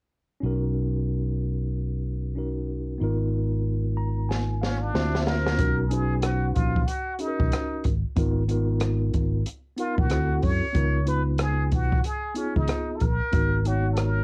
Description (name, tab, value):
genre	hip hop, jazz-hop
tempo	93 BPM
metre	4/4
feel	swing 61% on 16ths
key	unclear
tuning	A4 = 445 Hz
part	mellow tine electric piano	accompaniment	0.4-14.2 s	B3 to A#5	-33 LUFS	equal	cassette tape
part	fingered electric bass	bass	0.4-14.2 s	G#1 to F#2	-28 LUFS	equal	none
part	open jazz drum kit	drums	4.3-14.2 s	hi-hat, kick drum, rim click, snare drum	-29 LUFS	equal	none
part	trumpet with plunger mute	melody	4.6-14.2 s	C#4 to C#5	-33 LUFS	equal	cassette tape
room	little or no reverb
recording	home recording on cassette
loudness	-26 LUFS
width	mono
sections	0.4-5.6 A section; 5.6-14.2 B section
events	tine electric piano fill 3.7-5.6; drum fill 4.3-5.6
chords	0.4 Bmaj7; 3.0 G#m69; 4.9 D9; 5.6 Bmaj7; 8.2 G#m69; 10.1 D9; 10.7 C#13; 13.3 G#m9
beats	| 0.42 1.07 1.72 2.36 | 3.01 3.65 4.30 4.94 | 5.59 6.23 6.88 7.52 | 8.17 8.81 9.46 10.10 | 10.75 11.39 12.04 12.68 | 13.33 13.97